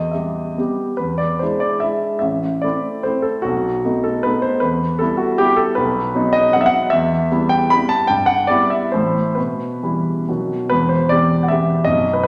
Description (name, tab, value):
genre	classical, romantic triple-time dance for piano with dotted rhythms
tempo	126-174 BPM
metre	3/4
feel	rubato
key	E minor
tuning	A4 = 440 Hz
part	warm grand piano	solo	0.0-12.3 s	B0 to B5	-18 LUFS	equal	none
room	wet recital hall reverb, RT60 1.3 s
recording	none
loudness	-18 LUFS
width	mono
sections	1.0-10.7 A section; 10.7-12.3 B section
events	none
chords	0.0 Em; 1.0 E7; 2.2 Am; 3.4 B7; 4.6 Em; 5.8 B; 6.9 Em; 8.1 Em/G; 8.9 Am; 9.4 Em/B; 10.3 B; 10.7 Em